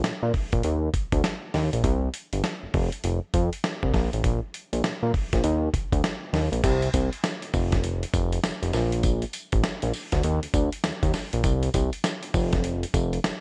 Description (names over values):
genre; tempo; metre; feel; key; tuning
R&B, new jack swing; 100 BPM; 4/4; swing 63% on 16ths; unclear; A4 = 441 Hz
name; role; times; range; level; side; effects
fat analog bass; bass; 0.0-13.3 s; F1 to Bb2; -27 LUFS; equal; none
dusty soul sampler-style drum kit; drums; 0.0-13.4 s; crash cymbal, hi-hat, kick drum, snare drum, tambourine; -29 LUFS; equal; none
room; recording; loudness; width
light reverb; none; -26 LUFS; mono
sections
0.0-6.6 A section; 6.6-13.4 B section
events
none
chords
none